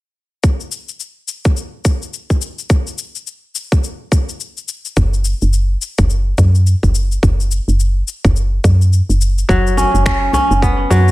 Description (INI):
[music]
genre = organic downtempo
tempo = 106 BPM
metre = 4/4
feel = swing 60% on 16ths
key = unclear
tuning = A4 = 440 Hz
[part]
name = electronic cabasa and finger snaps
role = drums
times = 0.4-11.1 s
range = none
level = -26 LUFS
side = left 6 dB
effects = overdrive
[part]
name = electronic kick drum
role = drums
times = 0.4-10.8 s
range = none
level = -15 LUFS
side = equal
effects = overdrive
[part]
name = woody FM bass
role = bass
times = 5.0-11.1 s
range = F#1 to F#2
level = -13 LUFS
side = equal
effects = none
[part]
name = kora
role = arpeggios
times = 9.5-11.1 s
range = F#3 to C#4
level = -14 LUFS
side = equal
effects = tape echo
[part]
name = djembe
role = percussion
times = 9.8-11.0 s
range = none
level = -23 LUFS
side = left 2 dB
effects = none
[sound]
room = digital ambience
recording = none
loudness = -13 LUFS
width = side -18 dB against mid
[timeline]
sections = 0.4-9.5 A section; 9.5-11.1 B section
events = none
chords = 0.4 N.C.; 9.5 F#5